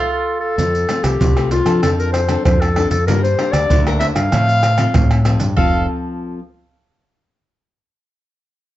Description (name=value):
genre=samba and choro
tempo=96 BPM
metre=4/4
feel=straight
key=F major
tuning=A4 = 440 Hz
part: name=clear clarinet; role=melody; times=0.0-5.9 s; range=F4 to F5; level=-19 LUFS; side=left 2 dB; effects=plate reverb
part: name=mandolin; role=second line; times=0.0-0.6, 5.6-5.9 s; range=F4 to A4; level=-23 LUFS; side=right 5 dB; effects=none
part: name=nylon-string guitar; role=accompaniment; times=0.6-6.4 s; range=A2 to Bb4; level=-22 LUFS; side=left 4 dB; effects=none
part: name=growling fingered electric bass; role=bass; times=0.6-5.9 s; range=F1 to F3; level=-18 LUFS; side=equal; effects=overdrive
part: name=maracas, surdo, pandeiro and tamborim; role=percussion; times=0.6-5.7 s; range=none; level=-19 LUFS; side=right 2 dB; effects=none
room=moderate studio ambience, RT60 0.5 s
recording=dark, warm production, nothing above 7.9 kHz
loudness=-13 LUFS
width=side -14 dB against mid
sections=0.6-5.6 A section; 5.6-8.1 B section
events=band accent 0.0-0.6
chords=0.0 F; 1.8 Dm7/F; 3.1 Gm; 4.3 F/A; 5.6 F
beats=| 0.59 1.21 1.83 2.45 | 3.08 3.70 4.32 4.94 | 5.57 6.19